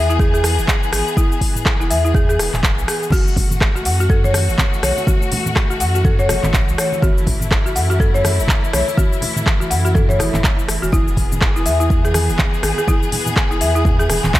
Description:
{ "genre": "afro house", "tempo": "123 BPM", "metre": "4/4", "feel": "swing 58% on 16ths", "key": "F# minor", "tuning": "A4 = 440 Hz", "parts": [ { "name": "rich studio string section", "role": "sustained chords", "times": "0.0-14.4 s", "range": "E3 to G#4", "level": "-24 LUFS", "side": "left 1 dB", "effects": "sidechain pumping" }, { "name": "folk marimba with medium hard mallets", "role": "arpeggios", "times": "0.0-14.1 s", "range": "E4 to F#5", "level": "-22 LUFS", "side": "left 1 dB", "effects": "sidechain pumping, analog delay" }, { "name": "warm sub bass", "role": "bass", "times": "0.0-14.4 s", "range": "E1 to F#2", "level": "-20 LUFS", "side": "equal", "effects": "sidechain pumping" }, { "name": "afro-pop drum kit", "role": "drums", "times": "0.1-14.4 s", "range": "cabasa, crash cymbal, handclaps, hi-hat, rim click, toms", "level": "-22 LUFS", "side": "left 1 dB", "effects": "none" }, { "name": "electronic kick drum", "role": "drums", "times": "0.2-14.4 s", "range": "none", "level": "-17 LUFS", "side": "equal", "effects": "none" }, { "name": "congas", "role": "percussion", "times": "3.1-14.4 s", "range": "none", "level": "-26 LUFS", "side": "right 1 dB", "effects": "none" } ], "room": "light reverb", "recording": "none", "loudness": "-14 LUFS", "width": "side -15 dB against mid", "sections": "0.0-14.4 A section", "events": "none", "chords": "0.0 E; 3.1 F#m7; 10.9 E", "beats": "0.20 0.68 | 1.17 1.66 2.15 2.63 | 3.12 3.61 4.10 4.59 | 5.07 5.56 6.05 6.54 | 7.03 7.51 8.00 8.49 | 8.98 9.46 9.95 10.44 | 10.93 11.41 11.90 12.39 | 12.88 13.37 13.85 14.34" }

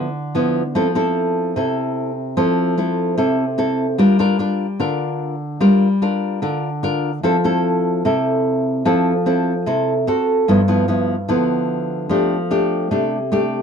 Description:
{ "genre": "bossa nova", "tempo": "148 BPM", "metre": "4/4", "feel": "straight", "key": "F major", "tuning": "A4 = 442 Hz", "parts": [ { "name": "nylon-string guitar", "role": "solo", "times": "0.0-13.6 s", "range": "G2 to Bb4", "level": "-16 LUFS", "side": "equal", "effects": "none" } ], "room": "light reverb", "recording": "dark, warm production", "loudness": "-16 LUFS", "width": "side -6 dB against mid", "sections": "0.0-13.6 A section", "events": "none", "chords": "0.0 G6 (rootless); 0.7 Fmaj7; 4.0 Gm7; 7.2 Fmaj7; 10.1 F#dim/C; 10.5 G6; 12.1 F69", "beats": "0.34 | 0.74 1.15 1.55 1.96 | 2.37 2.77 3.18 3.58 | 3.99 4.39 4.80 5.21 | 5.61 6.02 6.42 6.83 | 7.23 7.64 8.04 8.45 | 8.86 9.26 9.67 10.07 | 10.48 10.88 11.29 11.70 | 12.10 12.51 12.91 13.32" }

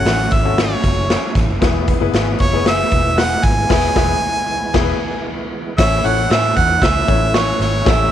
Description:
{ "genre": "uptempo 1960s-style soul", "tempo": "115 BPM", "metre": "4/4", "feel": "straight", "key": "A major", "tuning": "A4 = 440 Hz", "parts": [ { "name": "bright harmonica", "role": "melody", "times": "0.0-8.1 s", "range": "C#5 to G#5", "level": "-19 LUFS", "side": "right 2 dB", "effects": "none" }, { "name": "bright upright piano", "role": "accompaniment", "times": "0.0-8.1 s", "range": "B3 to C#5", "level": "-23 LUFS", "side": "left 12 dB", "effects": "none" }, { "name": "percussive tonewheel organ", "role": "sustained chords", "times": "0.0-8.1 s", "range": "E3 to E4", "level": "-28 LUFS", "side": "right 2 dB", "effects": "slow rotary speaker, overdrive, chorus vibrato" }, { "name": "vintage muted fingered electric bass", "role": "bass", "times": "0.0-8.1 s", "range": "E1 to A2", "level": "-20 LUFS", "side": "equal", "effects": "none" }, { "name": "raw garage drum kit", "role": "drums", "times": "0.1-8.0 s", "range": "crash cymbal, hi-hat, kick drum, snare drum", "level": "-17 LUFS", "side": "equal", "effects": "none" }, { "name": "glockenspiel with hard plastic mallets", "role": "second line", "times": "5.8-8.1 s", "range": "C#6 to F#6", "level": "-24 LUFS", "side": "right 17 dB", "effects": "none" } ], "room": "little or no reverb", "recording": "1960s-style stereo with parts hard left and right", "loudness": "-13 LUFS", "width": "side -10 dB against mid", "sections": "0.0-5.8 A section; 5.8-8.1 B section", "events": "band accent 3.7-5.8; upright piano fill 4.7-5.8", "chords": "0.0 F#m; 1.6 E; 5.8 A", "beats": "0.06 0.58 1.10 | 1.62 2.14 2.66 3.18 | 3.70 4.22 4.74 5.26 | 5.78 6.30 6.83 7.35 | 7.87" }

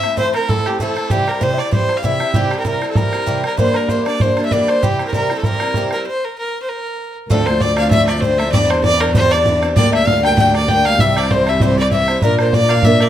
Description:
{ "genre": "celtic folk, Celtic reel", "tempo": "194 BPM", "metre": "4/4", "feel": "swing 55% on 8ths", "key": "unclear", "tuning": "A4 = 440 Hz", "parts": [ { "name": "clear fiddle", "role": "melody", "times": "0.0-13.1 s", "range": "G4 to G5", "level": "-19 LUFS", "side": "right 1 dB", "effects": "slapback echo, plate reverb" }, { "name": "baroque flute", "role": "second line", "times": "0.0-13.1 s", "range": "G4 to G5", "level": "-22 LUFS", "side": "left 4 dB", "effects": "none" }, { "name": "picked twelve-string acoustic guitar", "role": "accompaniment", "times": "0.0-13.1 s", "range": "D2 to Bb4", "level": "-19 LUFS", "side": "equal", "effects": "none" }, { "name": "bodhran", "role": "percussion", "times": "0.0-13.1 s", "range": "none", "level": "-19 LUFS", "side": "right 1 dB", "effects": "none" }, { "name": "warm cello", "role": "bass", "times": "7.3-13.1 s", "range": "C2 to Bb2", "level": "-19 LUFS", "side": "equal", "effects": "none" } ], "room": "moderate studio ambience, RT60 0.5 s", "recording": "none", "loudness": "-13 LUFS", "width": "side -11 dB against mid", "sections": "0.0-7.3 A section; 7.3-13.1 B section", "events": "stop 6.1-7.3", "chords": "0.0 Am; 1.1 C; 3.6 Em7b5; 4.8 C; 6.1 N.C.; 7.3 Dm7; 8.5 Cadd9/E; 9.8 Gm/D; 11.0 C; 12.2 Bb", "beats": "0.18 0.49 0.80 | 1.11 1.42 1.73 2.04 | 2.35 2.65 2.96 3.27 | 3.58 3.89 4.20 4.51 | 4.82 5.13 5.44 5.75 | 6.06 6.37 6.68 6.99 | 7.30 7.61 7.92 8.22 | 8.53 8.84 9.15 9.46 | 9.77 10.07 10.38 10.69 | 11.00 11.31 11.62 11.92 | 12.23 12.54 12.85" }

